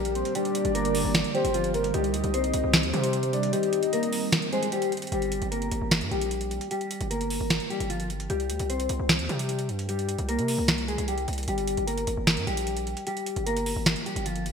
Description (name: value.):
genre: hip hop, trap.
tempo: 151 BPM.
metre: 4/4.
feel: half-time.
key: G minor.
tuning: A4 = 441 Hz.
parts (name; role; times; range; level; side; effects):
mellow electric guitar; melody; 0.0-14.4 s; F3 to C5; -29 LUFS; left 3 dB; lush chorus.
warm velvety synth lead; second line; 0.0-4.7 s; Bb4 to Eb5; -30 LUFS; right 1 dB; chorus, digital delay.
ethereal airy pad; sustained chords; 0.0-5.1 s; D3 to G4; -34 LUFS; right 3 dB; ensemble chorus, built-in reverb.
distorted 808-style bass; bass; 0.0-14.5 s; G1 to C3; -31 LUFS; equal; distortion.
booming analog drum machine; drums; 0.1-14.5 s; hi-hat, snare drum; -28 LUFS; right 1 dB; gated reverb.
room: moderate lush hall reverb, RT60 2.0 s.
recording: bright 1980s-style digital production.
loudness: -24 LUFS.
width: side -6 dB against mid.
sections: 0.0-5.1 A section; 5.1-14.5 B section.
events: kick muted 3.5-5.1.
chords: 0.0 Gm; 1.9 Cm; 5.1 Gm; 8.3 C5; 11.5 Gm.